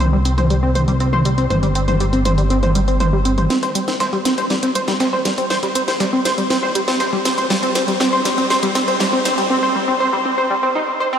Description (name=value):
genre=melodic techno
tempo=120 BPM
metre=4/4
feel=straight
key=unclear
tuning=A4 = 440 Hz
part: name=tight sequenced synth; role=arpeggios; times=0.0-11.2 s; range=G3 to C5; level=-17 LUFS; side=equal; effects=chorus, tape echo
part: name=fat analog bass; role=bass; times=0.0-3.5 s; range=G1 to C2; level=-17 LUFS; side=equal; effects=none
part: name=techno drum kit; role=drums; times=0.0-9.5 s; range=hi-hat, snare drum, toms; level=-22 LUFS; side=equal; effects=high-pass filter on hats, low-pass filter on hats, high-pass filter on toms, low-pass filter on toms, high-pass filter on snare, low-pass filter on snare, high-pass filter on room, low-pass filter on room
part: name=dusty soul sampler-style drum kit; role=drums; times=3.5-9.5 s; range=hi-hat, snare drum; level=-33 LUFS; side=right 1 dB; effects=none
room=wet huge ambient reverb, RT60 6.2 s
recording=dreamy mix soaked in reverb, high-pass filter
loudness=-15 LUFS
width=side -8 dB against mid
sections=0.0-3.5 A section; 3.5-11.2 B section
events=build-up 3.5-11.2; drum fill 3.5-9.5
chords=0.0 C5; 7.5 N.C.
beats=0.00 0.50 1.00 | 1.50 2.00 2.50 3.00 | 3.50 4.00 4.50 5.00 | 5.50 6.00 6.50 7.00 | 7.50 8.00 8.50 9.00 | 9.50 10.00 10.50 11.00